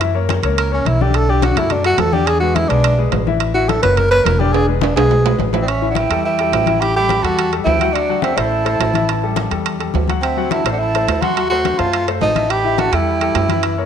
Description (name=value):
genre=Afro-Cuban jazz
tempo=211 BPM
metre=4/4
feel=straight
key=unclear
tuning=A4 = 440 Hz
part: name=warm concert grand piano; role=accompaniment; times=0.0-13.9 s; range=D3 to F#5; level=-22 LUFS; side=left 11 dB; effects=none
part: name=upright bass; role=bass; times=0.0-13.9 s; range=E1 to F#2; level=-20 LUFS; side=right 1 dB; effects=none
part: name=congas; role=percussion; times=0.0-13.9 s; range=none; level=-25 LUFS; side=left 10 dB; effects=none
part: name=timbales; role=percussion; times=0.0-13.8 s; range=none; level=-23 LUFS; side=right 13 dB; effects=none
part: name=warm tenor saxophone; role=melody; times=0.6-13.9 s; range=B3 to B4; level=-18 LUFS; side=right 1 dB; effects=none
part: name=breathy silver concert flute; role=second line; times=5.6-13.6 s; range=D5 to B#5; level=-24 LUFS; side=right 9 dB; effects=none
room=moderate echo chamber reverb, RT60 2.3 s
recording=1960s-style stereo with parts hard left and right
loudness=-14 LUFS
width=side -8 dB against mid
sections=0.0-5.7 A section; 5.7-13.9 B section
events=tenor saxophone solo 0.0-5.7; drum fill 4.5-5.7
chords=0.0 F#7; 1.1 Bm7; 2.3 E7; 3.4 A; 4.0 F#7; 4.5 E7; 5.7 A5; 7.9 D9; 9.1 A5; 10.2 D9; 11.4 D#dim7; 12.5 Asus2